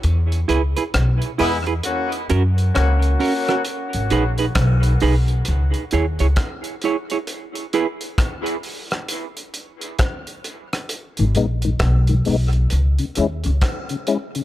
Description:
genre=dub reggae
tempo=66 BPM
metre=4/4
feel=swing 62% on 16ths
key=G# minor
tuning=A4 = 440 Hz
part: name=upright bass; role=bass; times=0.0-13.6 s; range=G#1 to F#2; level=-17 LUFS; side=equal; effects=none
part: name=cloth-damped thuddy drum kit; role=drums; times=0.0-14.4 s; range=hi-hat, kick drum, rim click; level=-24 LUFS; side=equal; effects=none
part: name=semi-hollow electric guitar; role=accompaniment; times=0.5-7.9 s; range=C#4 to C#5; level=-24 LUFS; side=right 5 dB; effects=dub echo
part: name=warm horn section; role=second line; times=1.4-3.6 s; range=G#3 to F#4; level=-24 LUFS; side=left 2 dB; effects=dub echo
part: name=mellow tonewheel organ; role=accompaniment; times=11.2-14.4 s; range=G#2 to E4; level=-22 LUFS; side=left 5 dB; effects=chorus vibrato
room=little or no reverb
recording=echo-heavy mix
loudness=-17 LUFS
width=side -14 dB against mid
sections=0.0-3.7 A section; 3.7-14.4 B section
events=break 0.0-3.7, 3.7-14.4; band accent 0.0-3.7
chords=0.0 E; 1.8 F#; 3.7 G#m; 5.5 C#m; 7.3 E; 9.1 N.C.; 10.9 G#m; 12.7 C#m

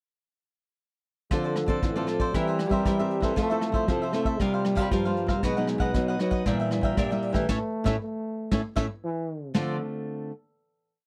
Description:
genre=samba and choro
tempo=117 BPM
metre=4/4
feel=straight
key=D minor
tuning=A4 = 441 Hz
part: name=breathy trombone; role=second line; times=1.3-9.8 s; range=E3 to A3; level=-33 LUFS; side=equal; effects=none
part: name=cavaquinho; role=accompaniment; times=1.3-9.8 s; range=D4 to G5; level=-34 LUFS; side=equal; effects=none
part: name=nylon-string guitar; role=accompaniment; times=1.3-10.3 s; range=G2 to Bb4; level=-32 LUFS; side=equal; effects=none
part: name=nylon-string guitar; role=bass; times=1.3-9.8 s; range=A2 to G3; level=-34 LUFS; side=equal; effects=none
part: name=vintage brush drum kit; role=drums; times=1.3-9.7 s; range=hi-hat, kick drum, rim click, snare drum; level=-31 LUFS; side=equal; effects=none
room=little or no reverb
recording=dry, close 1970s-style studio recording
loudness=-27 LUFS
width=mono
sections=1.3-9.5 groove; 9.5-11.1 final chord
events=band accent 7.5-9.5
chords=1.3 Dm7; 2.3 C7/E; 3.4 Fmaj7; 4.4 C7sus4; 5.4 B; 6.5 Em7b5/Bb; 7.5 A; 9.5 Dm7

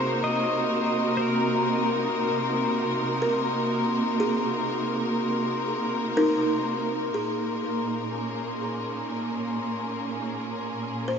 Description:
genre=ambient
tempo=61 BPM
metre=4/4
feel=straight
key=Bb minor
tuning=A4 = 440 Hz
part: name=pedal steel guitar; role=melody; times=0.0-6.1 s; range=Bb4 to Eb5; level=-31 LUFS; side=equal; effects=shimmer reverb, diffuse ambient delay
part: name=rich symphonic string section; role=sustained chords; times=0.0-11.2 s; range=Bb2 to Bb4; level=-26 LUFS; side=equal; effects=shimmer reverb
part: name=buzzing kalimba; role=arpeggios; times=0.0-11.2 s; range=Eb4 to C5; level=-30 LUFS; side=equal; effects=shimmer reverb, diffuse ambient delay
part: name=glass harmonica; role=texture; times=0.0-11.2 s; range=C6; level=-35 LUFS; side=left 5 dB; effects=stereo widening, shimmer reverb
room=wet huge ambient reverb, RT60 9.2 s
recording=cassette tape, nothing above 7.8 kHz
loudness=-24 LUFS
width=side -6 dB against mid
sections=0.0-7.2 A section; 7.2-11.2 B section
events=none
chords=0.0 Cm7b5; 7.2 Bbm9

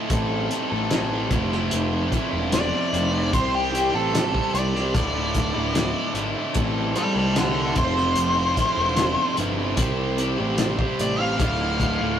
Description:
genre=psychedelic rock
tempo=74 BPM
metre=4/4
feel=straight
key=unclear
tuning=A4 = 440 Hz
part: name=combo organ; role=sustained chords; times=0.0-12.2 s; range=E3 to A4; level=-34 LUFS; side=right 3 dB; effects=none
part: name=overdriven electric guitar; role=riff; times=0.0-12.2 s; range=D2 to C5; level=-25 LUFS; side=equal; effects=none
part: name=fuzz picked electric bass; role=bass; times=0.1-12.2 s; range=D1 to C2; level=-27 LUFS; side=equal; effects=overdrive
part: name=cloth-damped thuddy drum kit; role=drums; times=0.1-12.0 s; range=hi-hat, kick drum, snare drum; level=-26 LUFS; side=equal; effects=none
part: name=octave-fuzz lead guitar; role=melody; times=2.5-12.2 s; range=G4 to G5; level=-24 LUFS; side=left 1 dB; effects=distortion
room=moderate stone room reverb, RT60 1.0 s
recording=rough rehearsal-room recording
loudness=-20 LUFS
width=side -9 dB against mid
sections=0.0-12.2 A section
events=lead electric guitar solo 0.0-12.2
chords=0.1 Am7; 1.3 Fmaj7; 3.3 Cadd9; 5.0 Dmadd9; 6.6 Am7; 7.8 Fmaj7; 9.8 Cadd9; 11.4 Dmadd9

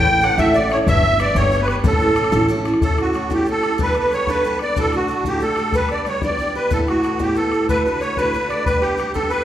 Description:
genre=celtic folk, Celtic jig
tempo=123 BPM (dotted quarters)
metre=6/8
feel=straight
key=A mixolydian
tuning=A4 = 440 Hz
part: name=musette accordion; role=melody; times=0.0-9.4 s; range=F#4 to G5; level=-19 LUFS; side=right 1 dB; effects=none
part: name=baroque flute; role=second line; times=0.0-2.5 s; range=A4 to G5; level=-22 LUFS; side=left 3 dB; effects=none
part: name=picked steel-string acoustic guitar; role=accompaniment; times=0.0-9.4 s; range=D2 to A4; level=-22 LUFS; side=right 1 dB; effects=none
part: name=upright bass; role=bass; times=0.0-2.7 s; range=G1 to A1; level=-22 LUFS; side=equal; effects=none
part: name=bodhran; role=percussion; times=0.2-9.4 s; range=none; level=-24 LUFS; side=left 2 dB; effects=none
room=wet recital hall reverb, RT60 1.6 s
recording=recorded in a church or concert hall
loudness=-16 LUFS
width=side -11 dB against mid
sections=0.0-2.8 A section; 2.8-9.4 B section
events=none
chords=0.0 A; 0.9 G; 1.8 A; 3.8 Gadd9; 4.8 D; 5.7 G; 6.7 Asus2; 7.7 D; 8.7 G

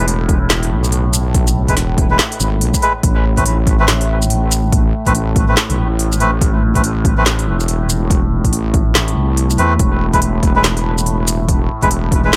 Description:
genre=deep dubstep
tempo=142 BPM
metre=4/4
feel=swing 61% on 16ths, half-time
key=A harmonic minor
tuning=A4 = 440 Hz
part: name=overtone-sweeping drone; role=sustained chords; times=0.0-12.4 s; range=A2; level=-25 LUFS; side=equal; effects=chorus, built-in reverb, phaser
part: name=melodica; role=stabs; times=0.0-12.3 s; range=G#3 to B4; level=-22 LUFS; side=equal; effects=dub echo
part: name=wobble bass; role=bass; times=0.0-12.3 s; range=E1 to E2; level=-19 LUFS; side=equal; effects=chorus
part: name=deep house drum kit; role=drums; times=0.1-12.4 s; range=handclaps, hi-hat, shaker, snare drum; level=-20 LUFS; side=equal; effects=none
part: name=electronic kick drum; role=drums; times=0.3-12.2 s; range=none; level=-19 LUFS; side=equal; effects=overdrive
room=light reverb, digital ambience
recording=none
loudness=-15 LUFS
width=mono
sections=0.0-3.0 A section; 3.0-12.4 A section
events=drop 0.0-3.0, 3.0-12.4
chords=0.0 E; 3.0 Am; 9.8 N.C.

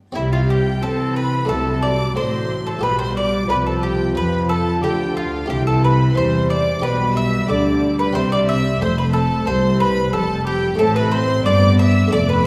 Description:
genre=classical, baroque-style concerto movement with solo episodes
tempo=90 BPM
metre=4/4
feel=straight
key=C major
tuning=A4 = 437 Hz
part: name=buff-stop harpsichord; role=accompaniment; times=0.0-12.5 s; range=C2 to A4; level=-29 LUFS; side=equal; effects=none
part: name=rich chamber violin section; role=melody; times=0.1-12.5 s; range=E5 to E6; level=-31 LUFS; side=equal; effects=none
part: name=rich chamber violin section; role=second line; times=0.1-12.4 s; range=E4 to E5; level=-28 LUFS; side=equal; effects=none
part: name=bowl-back mandolin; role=melody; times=0.2-12.4 s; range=E4 to E5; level=-25 LUFS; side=equal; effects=none
part: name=warm chamber viola section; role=accompaniment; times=0.2-12.5 s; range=E3 to C4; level=-27 LUFS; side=equal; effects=none
part: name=rich chamber cello section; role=bass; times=0.2-12.5 s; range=C2 to C4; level=-25 LUFS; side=equal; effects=none
part: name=rich chamber double bass section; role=bass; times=0.2-12.5 s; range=F1 to C3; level=-24 LUFS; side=equal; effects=none
room=wet concert hall reverb, RT60 2.0 s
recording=heard from further back in the room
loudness=-18 LUFS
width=mono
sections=0.2-12.5 A section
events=none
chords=0.2 C; 1.5 D7/C; 2.8 G7/B; 5.5 C; 6.8 G/B; 8.2 C; 10.8 Am

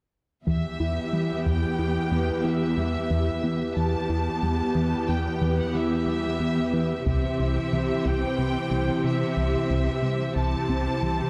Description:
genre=cinematic, hybrid orchestral and electronic film score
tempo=91 BPM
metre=5/4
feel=straight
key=E minor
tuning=A4 = 440 Hz
part: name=clear symphonic violin section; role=melody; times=0.5-11.3 s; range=E5 to A5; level=-35 LUFS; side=equal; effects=none
part: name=rich symphonic viola section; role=accompaniment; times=0.5-11.3 s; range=B3 to G4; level=-34 LUFS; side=equal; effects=none
part: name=hollow soft pad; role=sustained chords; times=0.5-11.3 s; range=E3 to C5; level=-32 LUFS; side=equal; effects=chorus
part: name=tight sequenced synth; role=arpeggios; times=0.5-11.2 s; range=C3 to E4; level=-36 LUFS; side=equal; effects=none
part: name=fat analog bass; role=riff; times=0.5-11.2 s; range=C2 to E3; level=-30 LUFS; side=equal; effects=none
part: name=rich symphonic cello section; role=bass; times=0.5-11.3 s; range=E2 to C3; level=-33 LUFS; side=equal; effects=none
part: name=taiko ensemble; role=drums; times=0.5-1.8, 7.1-8.4 s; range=none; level=-35 LUFS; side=equal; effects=none
room=moderate scoring stage reverb, RT60 1.8 s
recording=none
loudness=-25 LUFS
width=mono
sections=0.5-11.3 A section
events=none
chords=0.5 Em; 7.1 C

